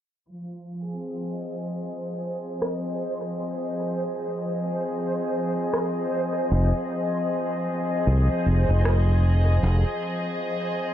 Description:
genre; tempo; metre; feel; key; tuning
ambient dub; 77 BPM; 4/4; swing 57% on 16ths; F minor; A4 = 440 Hz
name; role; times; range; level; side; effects
dark studio string section; sustained chords; 0.3-10.9 s; F3 to Eb5; -27 LUFS; left 1 dB; low-pass filter
backwards swelling texture; texture; 1.4-10.9 s; C5; -34 LUFS; right 3 dB; built-in reverb
electronic rim click; drums; 2.6-9.0 s; none; -32 LUFS; equal; dub echo
fingered electric bass; bass; 6.5-9.8 s; F1 to C2; -19 LUFS; equal; none
room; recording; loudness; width
moderate echo chamber reverb, RT60 2.2 s; low-pass filter; -23 LUFS; side -11 dB against mid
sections
0.3-10.9 A section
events
filter sweep on string section 0.3-10.9; filter sweep 0.3-10.9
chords
0.3 Fm7

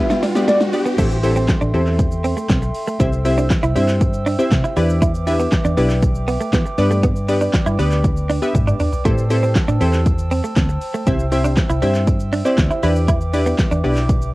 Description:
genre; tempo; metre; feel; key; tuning
dance-pop; 119 BPM; 4/4; straight; A minor; A4 = 440 Hz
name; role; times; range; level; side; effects
soft octave-layered synth lead; melody; 0.0-0.6 s; D5 to E5; -20 LUFS; left 1 dB; chorus, cassette tape, analog delay
wavetable chord stab; accompaniment; 0.0-14.3 s; B3 to E5; -21 LUFS; left 1 dB; sidechain pumping, cassette tape
glass harmonica; sustained chords; 0.0-14.3 s; G3 to E6; -28 LUFS; equal; sidechain pumping, cassette tape
riser; sound effects; 0.0-1.0 s; none; -26 LUFS; right 1 dB; none
direct-recorded clean electric guitar; riff; 0.1-14.1 s; A3 to E4; -23 LUFS; right 3 dB; ensemble chorus, cassette tape
pop drum kit; drums; 0.1-14.3 s; crash cymbal, handclaps, hi-hat, kick drum, shaker, snare drum, toms; -19 LUFS; equal; overdrive, cassette tape
vintage muted fingered electric bass; bass; 1.0-14.3 s; A1 to E3; -19 LUFS; equal; sidechain pumping
room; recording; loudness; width
light reverb; home recording on cassette; -15 LUFS; side -19 dB against mid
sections
1.0-14.3 A section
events
drum fill 0.0-1.0, 8.5-9.1; riser 0.0-1.0; drop 1.0-14.3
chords
0.0 G; 1.0 Am7; 3.0 C; 4.8 Em7; 6.8 G; 9.1 Am7; 11.1 C; 12.8 Em7

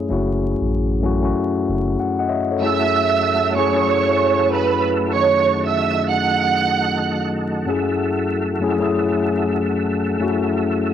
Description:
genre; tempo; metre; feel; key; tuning
hip hop; 95 BPM; 4/4; swing 59% on 16ths; F# dorian; A4 = 442 Hz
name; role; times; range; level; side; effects
mellow tine electric piano; accompaniment; 0.0-10.9 s; F#2 to F#5; -20 LUFS; left 4 dB; cassette tape, high-pass filter, low-pass filter
warm sub bass; bass; 0.1-2.0 s; F#1 to A1; -22 LUFS; equal; none
warm symphonic violin section; melody; 2.6-7.2 s; B4 to F#6; -18 LUFS; right 8 dB; high-pass filter, low-pass filter, cassette tape
tonewheel organ; sustained chords; 2.6-10.9 s; D#3 to E4; -24 LUFS; right 1 dB; chorus vibrato, fast rotary speaker, high-pass filter, low-pass filter
room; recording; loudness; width
light reverb; home recording on cassette, vinyl crackle; -17 LUFS; side -9 dB against mid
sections
0.0-2.6 A section; 2.6-10.9 B section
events
none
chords
0.0 F#m7

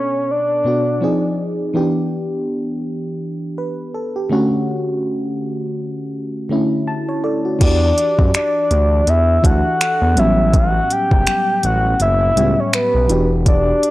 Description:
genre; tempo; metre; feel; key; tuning
contemporary R&B; 82 BPM; 4/4; swing 58% on 16ths; E dorian; A4 = 439 Hz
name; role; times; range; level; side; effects
soft octave-layered synth lead; melody; 0.0-1.4, 7.6-13.9 s; B4 to G5; -17 LUFS; left 1 dB; chorus
mellow FM electric piano; accompaniment; 0.0-13.9 s; A2 to A5; -20 LUFS; equal; chorus
smooth gliding synth bass; bass; 7.6-13.7 s; E1 to F#2; -17 LUFS; equal; none
smooth R&B drum kit; drums; 7.6-13.9 s; crash cymbal, finger snaps, hi-hat, kick drum; -16 LUFS; equal; none
room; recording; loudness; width
digital ambience; dry, gritty hardware recording, transformer saturation; -15 LUFS; side -17 dB against mid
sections
0.0-7.6 A section; 7.6-13.9 B section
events
FM electric piano fill 6.5-7.6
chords
0.0 Bm7; 1.0 Fm7; 1.8 Em7; 4.3 Dmaj7; 7.6 Em9; 10.2 A13; 13.1 Em9

